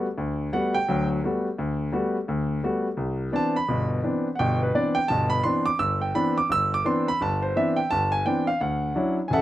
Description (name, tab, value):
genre	jazz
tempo	171 BPM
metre	4/4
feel	swing 62% on 8ths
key	C major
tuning	A4 = 440 Hz
part	clear concert grand piano	solo	0.0-9.4 s	G1 to E6	-22 LUFS	equal	none
room	light reverb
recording	recorded outdoors, with no room sound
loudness	-22 LUFS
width	side -14 dB against mid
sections	0.0-3.0 A section; 3.0-9.4 A section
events	none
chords	0.0 Gmaj9; 3.0 Cmaj9; 8.6 Dmaj9